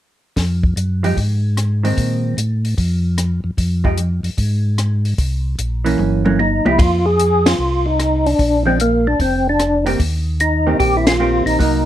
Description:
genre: soul jazz organ trio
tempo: 150 BPM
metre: 4/4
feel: swing 67% on 8ths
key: F minor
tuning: A4 = 440 Hz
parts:
  - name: mellow tonewheel organ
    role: bass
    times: 0.4-11.9 s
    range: F1 to Bb2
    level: -18 LUFS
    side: equal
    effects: slow rotary speaker
  - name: compact cocktail drum kit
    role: drums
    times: 0.4-11.7 s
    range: hi-hat, kick drum, ride cymbal, rim click, snare drum, toms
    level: -20 LUFS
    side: equal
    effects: none
  - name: vintage hollow-body jazz guitar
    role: accompaniment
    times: 1.0-11.8 s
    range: Eb3 to G4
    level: -20 LUFS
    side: right 3 dB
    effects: none
  - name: percussive tonewheel organ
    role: melody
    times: 6.4-11.9 s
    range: Bb3 to Ab4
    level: -16 LUFS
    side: equal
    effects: chorus vibrato, slow rotary speaker
room: light reverb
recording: none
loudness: -14 LUFS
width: side -12 dB against mid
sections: 0.4-6.8 A section; 6.8-11.9 B section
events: drum fill 6.0-6.8; band accent 7.4, 11.0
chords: 0.4 Fm7; 2.0 Bb9sus4; 3.6 Fm; 5.2 C7b9; 6.8 Fm7; 8.4 Bb; 10.0 Eb6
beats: | 0.36 0.77 1.17 1.57 | 1.97 2.37 2.77 3.17 | 3.58 3.98 4.38 4.78 | 5.18 5.58 5.98 6.38 | 6.79 7.19 7.59 7.99 | 8.39 8.79 9.19 9.59 | 9.99 10.39 10.79 11.19 | 11.59

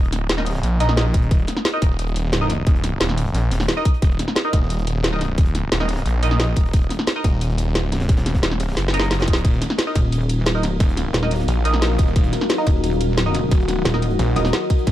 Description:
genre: dark technical drum and bass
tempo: 177 BPM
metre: 4/4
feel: straight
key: Eb minor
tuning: A4 = 440 Hz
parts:
  - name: snarling distorted saw bass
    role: bass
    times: 0.0-14.9 s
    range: Eb1 to Bb1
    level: -21 LUFS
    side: equal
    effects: distortion, tube saturation, sidechain pumping
  - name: crunchy breakbeat drum kit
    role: drums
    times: 0.0-14.9 s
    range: hi-hat, snare drum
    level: -35 LUFS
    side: equal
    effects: none
  - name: drum and bass drum kit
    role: drums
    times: 0.1-14.9 s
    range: hi-hat, ride cymbal, snare drum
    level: -23 LUFS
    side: equal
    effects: none
  - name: band-passed chord stab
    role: stabs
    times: 0.4-14.9 s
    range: Eb4 to Eb5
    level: -27 LUFS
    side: right 1 dB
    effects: phaser, digital delay
  - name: electronic kick drum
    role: drums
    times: 1.1-14.9 s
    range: none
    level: -17 LUFS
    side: equal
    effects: none
  - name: deep dark ambient pad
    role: sustained chords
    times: 10.5-14.9 s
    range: Eb4 to Gb5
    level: -26 LUFS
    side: left 3 dB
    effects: chorus, built-in reverb, sidechain pumping
  - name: pulsing pluck wobble bass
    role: bass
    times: 10.0-14.5 s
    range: Eb1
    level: -20 LUFS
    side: equal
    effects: chorus
room: little or no reverb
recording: dark, warm production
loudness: -17 LUFS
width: side -13 dB against mid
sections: 0.0-14.9 A section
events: drum fill 8.8-9.4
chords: 0.0 Ebmadd9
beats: 0.29 0.63 0.97 | 1.31 1.65 1.99 2.33 | 2.67 3.01 3.35 3.68 | 4.02 4.36 4.70 5.04 | 5.38 5.72 6.06 6.40 | 6.74 7.07 7.41 7.75 | 8.09 8.43 8.77 9.11 | 9.45 9.79 10.12 10.46 | 10.80 11.14 11.48 11.82 | 12.16 12.50 12.84 13.18 | 13.52 13.85 14.19 14.53 | 14.87

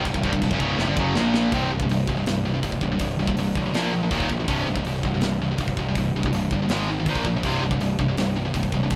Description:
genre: heavy metal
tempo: 162 BPM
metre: 4/4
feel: straight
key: C phrygian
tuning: A4 = 439 Hz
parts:
  - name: high-gain distorted guitar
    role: riff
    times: 0.0-9.0 s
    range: C2 to Bb3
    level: -26 LUFS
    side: equal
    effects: distortion
  - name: fuzz picked electric bass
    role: bass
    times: 0.0-9.0 s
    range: C1 to Bb1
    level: -29 LUFS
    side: equal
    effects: overdrive
  - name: tight metal drum kit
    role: drums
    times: 0.1-9.0 s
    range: china cymbal, hi-hat, kick drum, snare drum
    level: -31 LUFS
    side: equal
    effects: none
room: light reverb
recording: band playing live in one room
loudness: -24 LUFS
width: mono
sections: 0.0-1.5 A section; 1.5-9.0 B section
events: drum fill 0.8-1.5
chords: 0.0 C5; 1.2 Bb5; 1.5 C5; 3.7 Bb5; 4.1 Eb5; 4.5 C5; 6.7 Ab5; 7.1 Bb5; 7.4 C5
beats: | 0.05 0.42 0.79 1.16 | 1.52 1.89 2.26 2.63 | 3.00 3.37 3.74 4.11 | 4.48 4.85 5.22 5.59 | 5.96 6.33 6.70 7.07 | 7.44 7.81 8.18 8.54 | 8.91

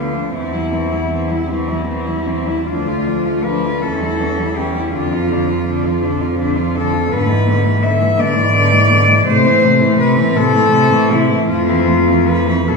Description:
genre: classical, lyrical piece for cello ensemble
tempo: 50-57 BPM (dotted quarters)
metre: 6/8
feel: rubato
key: A minor from 7.1 s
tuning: A4 = 435 Hz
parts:
  - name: rich cello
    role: melody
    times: 0.0-12.8 s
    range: E4 to E5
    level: -17 LUFS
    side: left 4 dB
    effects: none
  - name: warm cello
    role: second line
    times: 0.0-12.8 s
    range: G#3 to F4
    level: -21 LUFS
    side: right 2 dB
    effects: none
  - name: rich cello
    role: accompaniment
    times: 0.0-12.8 s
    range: C3 to A3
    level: -20 LUFS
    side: left 1 dB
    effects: none
  - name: rich cello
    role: bass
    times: 0.0-12.8 s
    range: D2 to B2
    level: -18 LUFS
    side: right 1 dB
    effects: none
room: wet recital hall reverb, RT60 1.4 s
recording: heard from further back in the room, small room ambience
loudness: -13 LUFS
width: side -4 dB against mid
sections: 0.0-12.8 A section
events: none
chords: 0.3 C/E; 2.7 Dm; 3.8 C#dim/E; 4.9 Dm/F; 7.1 E7/G#; 9.3 Am; 11.5 Fmaj7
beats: | 0.34 1.50 | 2.68 3.83 | 4.94 6.03 | 7.12 8.19 | 9.27 10.35 | 11.49 12.68

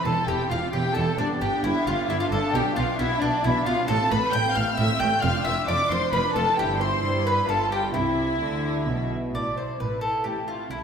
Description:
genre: classical, baroque-style concerto movement with solo episodes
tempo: 133 BPM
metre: 3/4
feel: straight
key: C major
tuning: A4 = 440 Hz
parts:
  - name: bowl-back mandolin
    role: melody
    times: 0.0-10.8 s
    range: D4 to G5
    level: -27 LUFS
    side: equal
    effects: none
  - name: warm chamber violin section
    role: melody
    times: 0.0-10.8 s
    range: D5 to G6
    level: -29 LUFS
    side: left 2 dB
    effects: none
  - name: lute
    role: accompaniment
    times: 0.0-10.8 s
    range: E2 to F4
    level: -36 LUFS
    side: equal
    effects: none
  - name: rich chamber viola section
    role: accompaniment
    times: 0.0-10.8 s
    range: A3 to F4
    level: -33 LUFS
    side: equal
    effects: none
  - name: dark chamber violin section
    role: second line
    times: 0.1-10.8 s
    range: D4 to G5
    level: -29 LUFS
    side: left 2 dB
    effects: none
  - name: warm chamber cello section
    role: bass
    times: 0.1-10.8 s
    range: E2 to G3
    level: -30 LUFS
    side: right 2 dB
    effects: none
  - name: warm chamber double bass section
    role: bass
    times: 0.1-10.8 s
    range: E1 to G2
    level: -30 LUFS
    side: right 3 dB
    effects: none
room: wet scoring stage reverb, RT60 1.7 s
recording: none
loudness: -22 LUFS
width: side -7 dB against mid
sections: 0.0-9.3 A section; 9.3-10.8 B section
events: none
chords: 0.0 C/E; 1.2 G; 2.5 Dm69/B; 3.9 Am; 5.2 Dm/F; 6.6 C/G; 7.5 G7; 7.9 C; 9.3 Am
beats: 0.27 0.73 | 1.18 1.63 2.09 | 2.54 2.99 3.44 | 3.88 4.33 4.78 | 5.23 5.68 6.12 | 6.58 7.03 7.48 | 7.95 8.41 8.88 | 9.34 9.80 10.25 | 10.70

